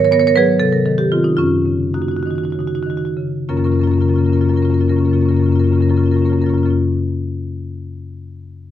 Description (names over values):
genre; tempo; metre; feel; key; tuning
classical, contemporary piece for solo marimba; 183-262 BPM (eighths); 7/8; rubato; Gb lydian; A4 = 439 Hz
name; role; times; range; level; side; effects
marimba with medium hard mallets; solo; 0.0-6.8 s; Gb2 to Db5; -14 LUFS; left 1 dB; none
room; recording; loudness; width
moderate stone room reverb, RT60 1.2 s; close, detailed microphones; -14 LUFS; side -11 dB against mid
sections
0.0-3.5 A section; 3.5-7.9 B section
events
slowing down 0.0-3.5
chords
0.0 Abm11; 0.6 Cm; 1.4 Gb6; 3.5 Gbmaj7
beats
0.12 0.35 0.59 0.84 1.11 | 1.38 1.66 1.95 2.24 2.54 2.85 3.18 | 3.50 3.81 4.13 4.44 4.75 5.07 5.38 | 5.68 5.99 6.30 6.62